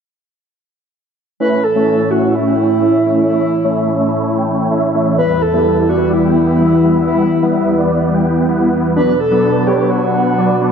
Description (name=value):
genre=EDM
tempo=127 BPM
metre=4/4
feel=straight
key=unclear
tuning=A4 = 440 Hz
part: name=breathy flute-like synth lead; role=melody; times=1.4-10.7 s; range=E4 to B4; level=-15 LUFS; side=equal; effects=lush chorus, ping-pong delay
part: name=lush unison pad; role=sustained chords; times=1.4-10.7 s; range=E2 to A4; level=-19 LUFS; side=right 1 dB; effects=chorus
part: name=supersaw chords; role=riff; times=1.4-10.7 s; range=F#3 to G5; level=-14 LUFS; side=equal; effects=phaser, low-pass filter
room=moderate lush hall reverb, RT60 2.3 s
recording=none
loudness=-11 LUFS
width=side -7 dB against mid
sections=1.4-10.7 A section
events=filter sweep on analog synth pad 1.4-10.7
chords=1.4 A; 5.2 Em; 9.0 Bm